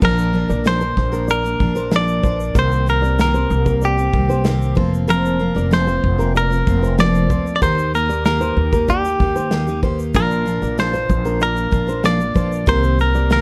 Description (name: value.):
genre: acoustic pop.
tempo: 95 BPM.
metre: 4/4.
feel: straight.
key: Bb major.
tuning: A4 = 440 Hz.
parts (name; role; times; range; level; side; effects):
direct-recorded clean electric guitar; melody; 0.0-13.4 s; G4 to D5; -23 LUFS; equal; none.
picked steel-string acoustic guitar; accompaniment; 0.0-13.4 s; F2 to Bb4; -24 LUFS; equal; none.
nylon-string guitar; arpeggios; 0.0-13.3 s; Bb4 to D5; -28 LUFS; equal; none.
upright bass; bass; 0.0-13.4 s; F1 to Eb2; -22 LUFS; equal; none.
modern studio drum kit; drums; 0.0-13.4 s; crash cymbal, kick drum, shaker, snare drum; -24 LUFS; equal; none.
room: light reverb.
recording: close, detailed microphones.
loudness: -18 LUFS.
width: mono.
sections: 0.0-13.4 A section.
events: none.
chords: 0.0 Bb; 2.6 Cm7; 4.8 Fsus4; 7.6 Eb; 10.1 Bb; 12.7 Cm7.